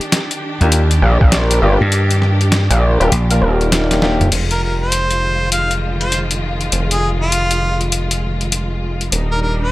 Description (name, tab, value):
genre	glitch hop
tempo	100 BPM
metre	4/4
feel	swing 63% on 16ths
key	F dorian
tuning	A4 = 439 Hz
part	warm studio string section	sustained chords	0.0-9.7 s	Eb3 to G4	-24 LUFS	equal	vintage 12-bit sampler grit, sidechain pumping
part	boom bap sampler-style drum kit	drums	0.0-9.3 s	crash cymbal, hi-hat, snare drum, toms	-18 LUFS	left 1 dB	none
part	dark concert grand piano	stabs	0.6-4.2 s	Bb3 to Bb4	-22 LUFS	left 2 dB	sidechain pumping, tape echo
part	vintage slap bass	bass	0.6-3.4 s	Bb1 to G2	-13 LUFS	equal	none
part	gritty driven synth bass	bass	1.0-9.7 s	Eb1 to Bb1	-17 LUFS	equal	tube saturation
part	electronic kick drum	drums	1.2-1.3 s	none	-12 LUFS	equal	none
part	clear harmonica	melody	4.5-9.7 s	F4 to F5	-21 LUFS	equal	tape echo
room	little or no reverb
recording	none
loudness	-13 LUFS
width	side -18 dB against mid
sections	0.0-4.3 A section; 4.3-9.7 B section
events	kick drops out 1.9-4.3; drum fill 3.9-4.3; band accent 4.0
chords	0.0 Ebmaj7; 4.3 Fm7; 9.1 Ebmaj7